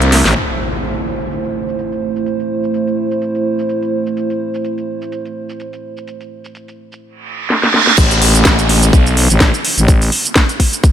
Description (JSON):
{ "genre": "bass house", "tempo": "126 BPM", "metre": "4/4", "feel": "swing 56% on 16ths", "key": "A minor", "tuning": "A4 = 444 Hz", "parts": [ { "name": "dark analog pad", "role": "sustained chords", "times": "0.0-7.9 s", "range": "A3 to C5", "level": "-19 LUFS", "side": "right 3 dB", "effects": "chorus, vintage 12-bit sampler grit, sidechain pumping" }, { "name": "growling FM bass", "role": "bass", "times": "0.0-0.3, 8.0-10.1 s", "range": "A1 to C2", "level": "-12 LUFS", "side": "equal", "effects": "tube saturation, sidechain pumping" }, { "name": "garage drum kit", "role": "drums", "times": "0.0-10.9 s", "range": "crash cymbal, hi-hat, shaker, snare drum", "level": "-14 LUFS", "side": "equal", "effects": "low-pass filter on hats, low-pass filter on snare, low-pass filter on perc, low-pass filter on cymbals" }, { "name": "impact, reverse cymbal and downlifter", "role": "sound effects", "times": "0.4-2.3, 7.3-10.9 s", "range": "none", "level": "-18 LUFS", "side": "right 2 dB", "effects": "none" }, { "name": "electronic kick drum", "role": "drums", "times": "8.0-10.9 s", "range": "none", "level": "-11 LUFS", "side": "equal", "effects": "none" } ], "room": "moderate lush hall reverb, RT60 2.7 s", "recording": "none", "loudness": "-12 LUFS", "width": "side -10 dB against mid", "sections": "0.4-8.0 A section; 8.0-10.9 B section", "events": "break 0.0-0.4; drum fill 0.1, 7.5-8.0; impact 0.4-2.3; reverse cymbal 7.3-8.0; drop 8.0-10.9", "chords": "0.4 Am; 8.0 N.C." }